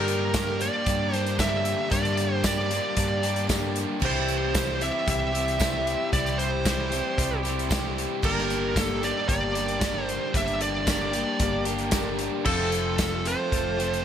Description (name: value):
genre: folk rock and heartland rock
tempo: 114 BPM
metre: 4/4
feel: straight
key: G dorian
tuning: A4 = 441 Hz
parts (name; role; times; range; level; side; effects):
- smooth overdriven lead guitar; melody; 0.0-14.0 s; A4 to E5; -28 LUFS; right 2 dB; digital delay
- picked twelve-string acoustic guitar; accompaniment; 0.0-14.0 s; G2 to A4; -33 LUFS; left 7 dB; none
- hand-pumped harmonium; sustained chords; 0.0-14.0 s; A3 to C5; -39 LUFS; right 2 dB; none
- crunchy overdriven guitar; riff; 0.0-14.0 s; F2 to G4; -30 LUFS; right 2 dB; none
- hollow-body short-scale fingered electric bass; bass; 0.0-14.0 s; F1 to G2; -31 LUFS; equal; none
- loose indie drum kit; drums; 0.1-14.0 s; crash cymbal, hi-hat, kick drum, snare drum; -29 LUFS; equal; gated reverb
- tambourine; percussion; 0.3-13.1 s; none; -37 LUFS; right 8 dB; none
room: moderate plate reverb, RT60 2.5 s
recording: bright 1980s-style digital production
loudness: -23 LUFS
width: side -9 dB against mid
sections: 0.0-14.0 A section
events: none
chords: 0.0 Gm; 4.0 C; 8.2 Gm; 12.5 F